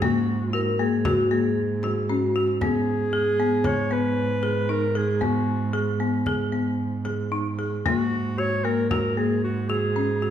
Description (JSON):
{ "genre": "contemporary instrumental, chamber music in an uneven meter", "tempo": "115 BPM", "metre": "5/4", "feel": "straight", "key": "G# minor", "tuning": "A4 = 440 Hz", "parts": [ { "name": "warm clarinet", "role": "melody", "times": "0.0-10.3 s", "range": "F#4 to C#5", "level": "-27 LUFS", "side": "equal", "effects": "none" }, { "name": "folk marimba with hard mallets", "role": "arpeggios", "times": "0.0-10.3 s", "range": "A#3 to G#4", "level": "-25 LUFS", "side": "left 3 dB", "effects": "none" }, { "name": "warm cello", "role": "bass", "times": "0.0-10.3 s", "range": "G#2", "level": "-28 LUFS", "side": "right 5 dB", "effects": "none" }, { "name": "frame drum", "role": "percussion", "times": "0.0-9.9 s", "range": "none", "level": "-32 LUFS", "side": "left 1 dB", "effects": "none" }, { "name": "vibraphone with medium mallets", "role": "second line", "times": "0.5-2.5 s", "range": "F#4 to A#4", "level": "-25 LUFS", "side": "left 2 dB", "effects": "none" } ], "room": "wet recital hall reverb, RT60 1.6 s", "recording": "minimal, uncompressed stereo recording", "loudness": "-21 LUFS", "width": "side -10 dB against mid", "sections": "0.0-10.3 A section", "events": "none", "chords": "0.0 F#add9/G#; 2.6 G#m; 7.8 F#add9/G#", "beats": "| 0.01 0.53 1.05 1.57 2.09 | 2.61 3.13 3.65 4.17 4.69 | 5.21 5.74 6.26 6.79 7.32 | 7.85 8.38 8.91 9.43 9.95" }